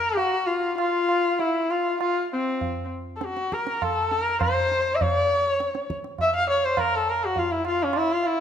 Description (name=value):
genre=indian classical, Hindustani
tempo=100 BPM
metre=4/4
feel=straight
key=F raga bhairav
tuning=A4 = 441 Hz
part: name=rich sarangi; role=melody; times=0.0-8.4 s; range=C4 to F5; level=-22 LUFS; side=left 2 dB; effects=none
part: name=tabla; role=percussion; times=0.2-8.4 s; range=none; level=-30 LUFS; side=right 5 dB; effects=none
room=moderate recital hall reverb, RT60 1.4 s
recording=none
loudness=-22 LUFS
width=side -8 dB against mid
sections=0.0-8.4 A section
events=speeding up 0.0-8.4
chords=none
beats=| 0.17 0.78 1.39 2.00 | 2.60 3.21 3.81 4.41 | 5.00 5.59 6.18 6.77 | 7.36 7.95